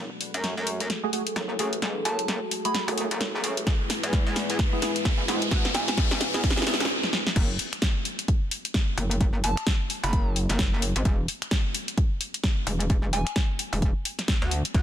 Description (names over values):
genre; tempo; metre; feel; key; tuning
bass house; 130 BPM; 4/4; swing 59% on 16ths; unclear; A4 = 440 Hz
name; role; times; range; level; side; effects
dark analog pad; sustained chords; 0.0-6.9 s; G#3 to B4; -33 LUFS; left 1 dB; chorus, sidechain pumping
metallic wobble bass; bass; 0.0-14.8 s; E1 to F#2; -29 LUFS; equal; chorus, tube saturation, sidechain pumping, high-pass filter
riser; sound effects; 2.2-6.9 s; none; -34 LUFS; left 1 dB; none
house drum kit; drums; 0.2-14.8 s; crash cymbal, finger snaps, hi-hat, snare drum; -28 LUFS; equal; none
percussive organ stab; stabs; 1.0-6.8 s; A3 to G#4; -33 LUFS; right 2 dB; analog chorus, vintage 12-bit sampler grit, sidechain pumping, ping-pong delay
soft synth bell; melody; 2.1-3.0, 5.7-5.9, 9.4-10.4, 13.1-13.3 s; G#5 to B5; -34 LUFS; right 2 dB; chorus, ping-pong delay
electronic kick drum; drums; 3.7-14.8 s; none; -24 LUFS; equal; overdrive
room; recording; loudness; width
light reverb; dense, heavily limited modern master; -23 LUFS; side -10 dB against mid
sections
0.0-7.4 A section; 7.4-14.8 B section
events
build-up 0.0-7.4; drum fill 0.0-6.9, 7.0-7.4; riser 2.2-6.9; stop 6.9-7.4; drop 7.4-14.8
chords
0.0 F#madd9; 3.7 E; 7.4 N.C.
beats
0.44 0.90 1.36 | 1.82 2.28 2.75 3.21 | 3.67 4.13 4.59 5.05 | 5.51 5.98 6.44 6.90 | 7.36 7.82 8.28 8.74 | 9.21 9.67 10.13 10.59 | 11.05 11.51 11.98 12.44 | 12.90 13.36 13.82 14.28 | 14.74